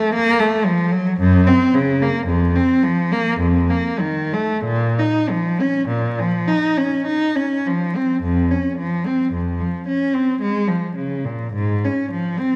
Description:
classical, baroque-style suite movement for unaccompanied cello; 45-58 BPM; 3/4; rubato; Bb minor, F minor from 8.2 s; A4 = 439 Hz
rich cello; solo; 0.0-12.6 s; F2 to Eb4; -19 LUFS; equal
wet recital hall reverb, RT60 1.8 s; dark, warm production, vinyl crackle; -19 LUFS; mono
0.0-8.2 A section; 8.2-12.6 A section

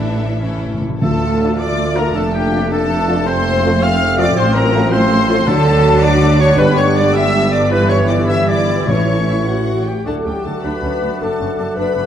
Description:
classical; 99-110 BPM (dotted quarters); 6/8; rubato; D minor, D major from 5.5 s; A4 = 445 Hz
warm symphonic violin section; melody; 0.0-12.1 s; E5 to F6; -24 LUFS; left 5 dB
bright symphonic violin section; second line; 0.0-12.1 s; E4 to B5; -25 LUFS; left 3 dB
warm symphonic viola section; accompaniment; 0.0-12.1 s; E3 to A4; -23 LUFS; right 1 dB
clear symphonic double bass section; bass; 0.0-12.0 s; F1 to D2; -22 LUFS; right 2 dB
rich symphonic cello section; bass; 0.0-12.0 s; D2 to D3; -22 LUFS; right 1 dB
timpani; percussion; 0.0-1.5, 5.5-6.0, 8.9-9.4 s; A2 to D3; -22 LUFS; left 2 dB
mellow clarinet; second line; 1.0-12.1 s; C4 to B4; -26 LUFS; left 2 dB
small flute group; second line; 1.0-12.1 s; G4 to D6; -24 LUFS; equal
warm oboe; second line; 1.0-12.1 s; G4 to F#5; -25 LUFS; equal
warm bassoon; accompaniment; 1.0-12.1 s; E3 to A3; -25 LUFS; right 1 dB
warm trumpet section; stabs; 1.0-12.1 s; E4 to F5; -23 LUFS; equal
mellow tuba; bass; 1.0-12.0 s; F1 to D2; -22 LUFS; right 2 dB
dark trombone section; sustained chords; 1.4-12.1 s; F2 to D4; -24 LUFS; right 3 dB
warm French horn section; sustained chords; 1.4-12.1 s; A3 to B4; -23 LUFS; left 4 dB
moderate concert hall reverb, RT60 1.8 s; dark, warm production; -12 LUFS; side -9 dB against mid
0.0-1.0 A section; 1.0-10.1 B section; 10.1-12.1 C section
timpani fill 0.4-1.0
0.4 A; 1.0 Dm; 2.2 Dm/F; 3.3 F; 4.4 F/A; 5.5 D; 6.6 G5; 8.9 A; 10.1 D; 11.2 D/F#

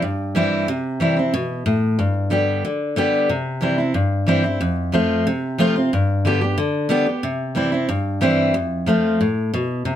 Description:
bluegrass; 183 BPM; 4/4; straight; C major; A4 = 440 Hz
picked steel-string acoustic guitar; solo; 0.0-10.0 s; F2 to G4; -18 LUFS; equal
moderate studio reverb, RT60 0.5 s; -18 LUFS; side -10 dB against mid
0.0-8.5 A section; 8.5-10.0 A section
0.0 C; 2.0 G; 3.3 C; 4.6 F; 5.9 G; 7.2 C; 8.5 F

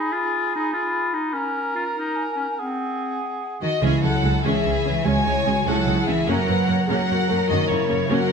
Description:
cinematic; 98 BPM (dotted quarters); 12/8; straight; C# minor from 3.8 s; A4 = 440 Hz
bright clarinet; second line; 0.0-3.2 s; C4 to F4; -25 LUFS; left 2 dB
mellow cor anglais; second line; 0.0-3.6 s; Ab4 to Bb4; -29 LUFS; right 4 dB
mellow hollow concert flute; second line; 0.0-3.6 s; Gb5 to Cb6; -29 LUFS; left 3 dB
warm symphonic violin section; melody; 3.6-8.3 s; C#5 to G#5; -25 LUFS; left 2 dB
warm symphonic violin section; second line; 3.6-8.3 s; E4 to C#5; -27 LUFS; left 3 dB
rich symphonic cello section; bass; 3.6-8.3 s; C#3 to G#3; -25 LUFS; right 5 dB
rich symphonic viola section; accompaniment; 3.8-8.3 s; G#3 to C#4; -27 LUFS; right 1 dB
warm French horn section; sustained chords; 3.8-8.3 s; E4 to B4; -27 LUFS; left 5 dB
concert harp; arpeggios; 3.8-8.3 s; F#2 to G#5; -29 LUFS; left 6 dB
clear studio double bass section; bass; 3.8-8.2 s; C#2 to F#2; -26 LUFS; right 4 dB
timpani; percussion; 3.8-4.4 s; C#3; -27 LUFS; equal
wet recital hall reverb, RT60 1.4 s; -20 LUFS; side -6 dB against mid
0.0-3.8 A section; 3.8-8.3 B section
0.0 Abm6/Eb; 1.3 Bbm/Db; 2.6 Ab7/C; 3.8 C#m; 6.3 F#

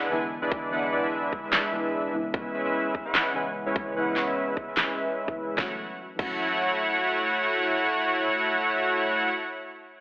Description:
future bass; 148 BPM; 4/4; half-time; F# minor; A4 = 435 Hz
soft round pluck; accompaniment; 0.0-9.3 s; C#3 to F#4; -36 LUFS; equal; lush chorus, sidechain pumping, tape echo
soft supersaw; riff; 0.0-9.3 s; G#3 to G#5; -25 LUFS; equal; sidechain pumping, low-pass filter, tape echo
electronic kick drum; drums; 0.5-6.3 s; -30 LUFS; equal; overdrive, small room ambience
pop drum kit; drums; 1.5-6.3 s; crash cymbal, handclaps, snare drum; -27 LUFS; equal; small room ambience
wet digital room reverb, RT60 1.1 s, digital ambience; telephone sound; -24 LUFS; side -21 dB against mid
0.0-5.6 A section; 5.6-8.8 B section
filter sweep on supersaw synth 0.0-5.6
0.0 E7; 2.1 C#m7; 5.6 F#m7

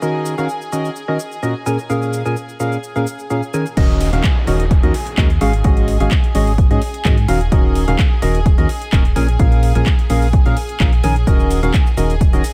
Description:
piano house; 128 BPM; 4/4; straight; Eb minor; A4 = 441 Hz
rich studio string section; sustained chords; 0.0-12.5 s; Ab4 to Ab5; -32 LUFS; equal; sidechain pumping
percussive organ stab; riff; 0.0-12.4 s; Bb2 to Ab5; -22 LUFS; equal; lush chorus, cassette tape, sidechain pumping, digital delay
garage drum kit; drums; 0.0-12.5 s; crash cymbal, handclaps, hi-hat, shaker; -30 LUFS; equal; overdrive
organ-like FM bass; bass; 3.8-12.4 s; Eb1 to Ab2; -20 LUFS; equal; sidechain pumping
electronic kick drum; drums; 3.8-12.3 s; -17 LUFS; equal
downlifter; sound effects; 3.8-7.5 s; -36 LUFS; equal
little or no reverb; -16 LUFS; mono
0.0-3.8 A section; 3.8-12.5 B section
drop 3.8-12.5
0.0 Ebm7; 1.7 Bbm7; 3.8 Ebm7; 5.4 Ab7sus4; 7.3 Ebm7; 9.2 Bbm7; 11.3 Ebm7

